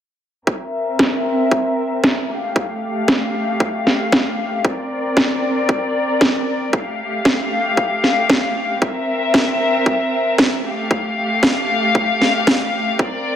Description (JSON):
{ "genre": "nu-disco, nu disco", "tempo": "115 BPM", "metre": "4/4", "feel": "swing 53% on 16ths", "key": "F major", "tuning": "A4 = 442 Hz", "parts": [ { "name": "warm chamber string section", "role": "sustained chords", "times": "0.5-13.4 s", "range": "A3 to F5", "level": "-19 LUFS", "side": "left 2 dB", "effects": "sidechain pumping, low-pass filter" }, { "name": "electronic kick drum", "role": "drums", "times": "0.5-13.1 s", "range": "none", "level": "-20 LUFS", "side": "equal", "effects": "overdrive, high-pass filter on kick, high-pass filter on room" }, { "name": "electronic snare drum", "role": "drums", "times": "1.0-12.6 s", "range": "none", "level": "-18 LUFS", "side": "equal", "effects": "overdrive, low-pass filter on snare, low-pass filter on room" } ], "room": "moderate lush hall reverb, RT60 2.2 s", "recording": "none", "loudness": "-16 LUFS", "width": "side -10 dB against mid", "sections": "0.5-13.4 A section", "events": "filter sweep on string section 0.5-13.4", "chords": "0.5 C7; 2.3 Fadd9; 4.6 Bbadd9; 6.7 Fadd9; 8.8 C7; 10.6 Fadd9" }